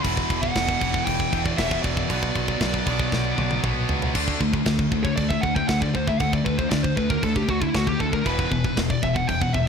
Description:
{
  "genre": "heavy metal",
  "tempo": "117 BPM",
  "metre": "4/4",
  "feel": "straight",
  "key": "unclear",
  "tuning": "A4 = 439 Hz",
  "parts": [
    { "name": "high-gain lead guitar", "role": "melody", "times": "0.0-9.7 s", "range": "E4 to B5", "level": "-27 LUFS", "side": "right 1 dB", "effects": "distortion, digital delay" },
    { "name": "high-gain distorted guitar", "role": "riff", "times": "0.0-9.7 s", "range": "E2 to D4", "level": "-28 LUFS", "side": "right 13 dB", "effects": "distortion" },
    { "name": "scooped high-gain guitar", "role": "riff", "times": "0.0-9.7 s", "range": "E2 to D4", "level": "-26 LUFS", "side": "left 11 dB", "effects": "distortion" },
    { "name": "growling picked electric bass", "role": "bass", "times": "0.0-9.7 s", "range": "E1 to D2", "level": "-28 LUFS", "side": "right 1 dB", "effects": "overdrive" },
    { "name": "tight metal drum kit", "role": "drums", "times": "0.0-9.7 s", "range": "crash cymbal, kick drum, snare drum, toms", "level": "-27 LUFS", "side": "right 1 dB", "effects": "none" }
  ],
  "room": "small room ambience",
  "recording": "none",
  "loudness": "-20 LUFS",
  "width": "side -6 dB against mid",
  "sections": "0.0-4.2 A section; 4.2-9.7 B section",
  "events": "drum fill 3.1-4.2; lead electric guitar solo 4.2-9.7",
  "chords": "0.0 E5; 2.1 Bm; 4.2 D5; 8.3 E5"
}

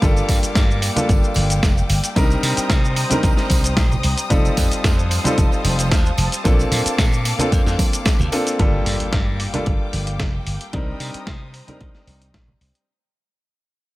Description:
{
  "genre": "nu-disco, nu disco",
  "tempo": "112 BPM",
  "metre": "4/4",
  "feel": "straight",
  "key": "G minor",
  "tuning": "A4 = 441 Hz",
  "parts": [
    { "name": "warm grand piano", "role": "accompaniment", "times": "0.0-12.9 s", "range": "G3 to Bb4", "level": "-24 LUFS", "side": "left 1 dB", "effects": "sidechain pumping, analog delay" },
    { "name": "warm symphonic string section", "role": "sustained chords", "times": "0.0-12.9 s", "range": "Bb3 to Eb6", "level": "-28 LUFS", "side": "equal", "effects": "sidechain pumping" },
    { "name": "slap bass", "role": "bass", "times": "0.0-12.7 s", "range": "F1 to C3", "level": "-22 LUFS", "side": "equal", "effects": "none" },
    { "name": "dusty soul sampler-style drum kit", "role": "drums", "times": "0.0-12.9 s", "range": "hi-hat, shaker, snare drum", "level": "-24 LUFS", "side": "equal", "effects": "none" },
    { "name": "electronic kick drum", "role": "drums", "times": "0.0-12.5 s", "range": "none", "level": "-18 LUFS", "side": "equal", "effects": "overdrive" },
    { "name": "tambourine and congas", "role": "percussion", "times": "0.0-12.6 s", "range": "none", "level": "-29 LUFS", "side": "right 3 dB", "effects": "none" },
    { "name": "impact", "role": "sound effects", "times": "8.7-10.7 s", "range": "none", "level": "-29 LUFS", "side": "equal", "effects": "none" }
  ],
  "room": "digital ambience",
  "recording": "none",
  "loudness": "-16 LUFS",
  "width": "side -18 dB against mid",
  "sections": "0.0-8.6 A section; 8.6-12.9 B section",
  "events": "drop 0.0-8.6; fade-out 8.6-12.9; impact 8.6-10.7",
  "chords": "0.0 Gm7; 2.2 Cm7; 4.3 F7; 6.5 Bbmaj7; 8.6 Gm7; 10.7 Cm7"
}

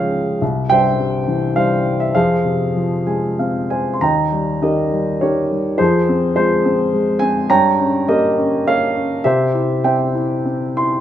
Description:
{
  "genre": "classical, lyrical solo piano",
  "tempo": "93-107 BPM",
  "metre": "3/4",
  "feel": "rubato",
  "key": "F minor",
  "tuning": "A4 = 438 Hz",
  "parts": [
    { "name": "dark upright piano", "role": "solo", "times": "0.0-11.0 s", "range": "C2 to C6", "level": "-15 LUFS", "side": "equal", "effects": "none" }
  ],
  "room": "moderate recital hall reverb, RT60 1.4 s",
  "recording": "nothing above 10.9 kHz, faint mains hum",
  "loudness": "-15 LUFS",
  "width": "side -11 dB against mid",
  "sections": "0.0-4.0 A section; 4.0-11.0 B section",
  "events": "upright piano fill 2.8-4.0",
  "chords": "0.4 C; 2.1 Fm; 4.0 Eb; 5.8 Fm; 7.5 Gdim; 9.2 C"
}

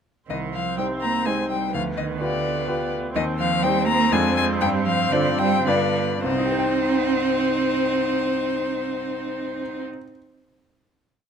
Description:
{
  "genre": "quick classical-period movement for piano quartet",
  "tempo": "101-129 BPM",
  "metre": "3/4",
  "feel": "rubato",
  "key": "C minor",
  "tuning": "A4 = 441 Hz",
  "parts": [
    { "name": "warm violin", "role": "melody", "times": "0.3-9.8 s", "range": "C5 to Bb5", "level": "-25 LUFS", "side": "left 8 dB", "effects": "none" },
    { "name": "rich cello", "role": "second line", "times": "0.3-9.8 s", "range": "D3 to C4", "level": "-26 LUFS", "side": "right 8 dB", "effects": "none" },
    { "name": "bright baby grand piano", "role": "accompaniment", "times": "0.3-10.2 s", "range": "C2 to G5", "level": "-26 LUFS", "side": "left 2 dB", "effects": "none" },
    { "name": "warm viola", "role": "accompaniment", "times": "0.3-9.8 s", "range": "B3 to Eb4", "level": "-28 LUFS", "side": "right 3 dB", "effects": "none" }
  ],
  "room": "moderate large studio reverb, RT60 1.4 s",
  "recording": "close, detailed microphones",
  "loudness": "-20 LUFS",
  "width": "side -7 dB against mid",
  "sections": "0.3-6.2 A section; 6.2-9.6 final chord",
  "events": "slowing down 2.4-6.2",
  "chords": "0.3 Cm; 1.7 G7/D; 3.2 Cm/Eb; 4.1 Dm7b5/F; 4.6 G7sus4; 5.7 G7; 6.2 Cm"
}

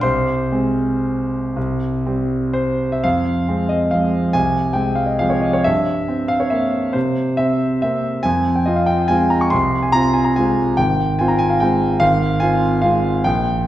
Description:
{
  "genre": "classical, piano waltz",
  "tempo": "114-155 BPM",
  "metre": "3/4",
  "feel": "rubato",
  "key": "F minor",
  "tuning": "A4 = 438 Hz",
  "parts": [
    { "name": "clear concert grand piano", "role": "solo", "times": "0.0-13.7 s", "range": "Ab1 to Db6", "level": "-15 LUFS", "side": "equal", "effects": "none" }
  ],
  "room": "wet recital hall reverb, RT60 1.3 s",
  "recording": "heard from further back in the room",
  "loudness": "-15 LUFS",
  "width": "side -13 dB against mid",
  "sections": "0.0-3.0 A section; 3.0-13.7 B section",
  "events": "none",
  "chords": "0.0 Ab/C; 1.6 C5; 3.0 Fm; 5.6 C7/G; 8.2 Fm; 10.8 Fm/Ab"
}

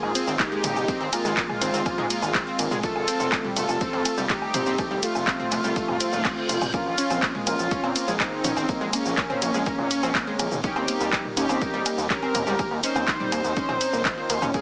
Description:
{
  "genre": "melodic techno",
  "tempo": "123 BPM",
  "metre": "4/4",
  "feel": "straight",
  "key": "unclear",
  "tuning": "A4 = 440 Hz",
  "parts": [
    { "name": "analog synth brass", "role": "melody", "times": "0.0-14.6 s", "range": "Ab3 to C5", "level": "-30 LUFS", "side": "equal", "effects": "chorus, sidechain pumping, dub echo" },
    { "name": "gritty driven synth bass", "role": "bass", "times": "0.0-14.5 s", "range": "Eb1 to Bb2", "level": "-32 LUFS", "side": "equal", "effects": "sidechain pumping" },
    { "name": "punchy analog drum machine", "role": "drums", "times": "0.0-14.6 s", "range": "handclaps, hi-hat, ride cymbal, shaker, toms, woodblock", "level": "-30 LUFS", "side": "equal", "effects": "studio reverb" },
    { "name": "analog pluck", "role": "arpeggios", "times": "0.2-14.6 s", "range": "G3 to F5", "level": "-31 LUFS", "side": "equal", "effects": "chorus, sidechain pumping, dub echo" },
    { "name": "electronic kick drum", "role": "drums", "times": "0.4-14.6 s", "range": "none", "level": "-34 LUFS", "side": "equal", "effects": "studio reverb" },
    { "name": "reverse cymbal", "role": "sound effects", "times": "6.0-6.7 s", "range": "none", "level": "-38 LUFS", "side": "equal", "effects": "none" }
  ],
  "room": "light reverb",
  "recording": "heavily compressed radio sound, multiband compression, small speaker sound",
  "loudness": "-25 LUFS",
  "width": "mono",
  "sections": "0.0-14.6 A section",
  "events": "reverse cymbal 6.0-6.7",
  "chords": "0.0 Ab6; 2.8 F; 6.7 Bbm; 10.6 Eb"
}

